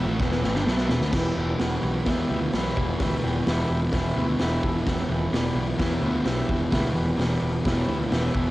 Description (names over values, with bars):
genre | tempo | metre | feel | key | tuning
garage rock duo or trio | 128 BPM | 4/4 | straight | E minor | A4 = 441 Hz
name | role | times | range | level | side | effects
combo organ | sustained chords | 0.0-8.5 s | G4 to B5 | -34 LUFS | equal | spring reverb, cassette tape
fuzz guitar | riff | 0.0-8.5 s | E2 to B3 | -25 LUFS | equal | distortion, cassette tape
growling picked electric bass | bass | 0.0-8.5 s | E1 to E2 | -29 LUFS | equal | overdrive
raw garage drum kit | drums | 0.2-8.5 s | crash cymbal, hi-hat, kick drum, snare drum | -27 LUFS | equal | cassette tape
room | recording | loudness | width
moderate small room reverb, RT60 0.5 s | home recording on cassette | -22 LUFS | side -17 dB against mid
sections
0.0-1.1 A section; 1.1-8.5 B section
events
transistor combo organ fill 0.0-1.1; drum fill 0.2-1.1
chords
0.0 Em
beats
0.18 0.65 | 1.12 1.58 2.05 2.52 | 2.99 3.46 3.92 4.39 | 4.86 5.32 5.79 6.26 | 6.72 7.19 7.65 8.12